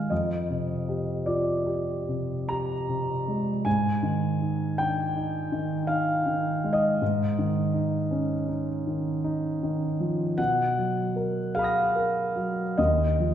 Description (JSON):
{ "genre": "classical, impressionist solo piano", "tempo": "53 BPM", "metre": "3/4", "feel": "uneven beats, rubato", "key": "unclear", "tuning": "A4 = 440 Hz", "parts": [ { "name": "clear concert grand piano", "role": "solo", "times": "0.0-13.3 s", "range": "Eb2 to A#6", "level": "-24 LUFS", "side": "equal", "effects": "none" } ], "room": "wet scoring stage reverb, RT60 1.6 s", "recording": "heard from further back in the room", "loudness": "-24 LUFS", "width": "side -10 dB against mid", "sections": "0.0-13.3 A section", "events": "none", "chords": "0.1 F9sus4; 3.7 Ab5; 7.0 Eb7sus4/Ab; 10.4 Bmaj7; 12.8 Ebsus2" }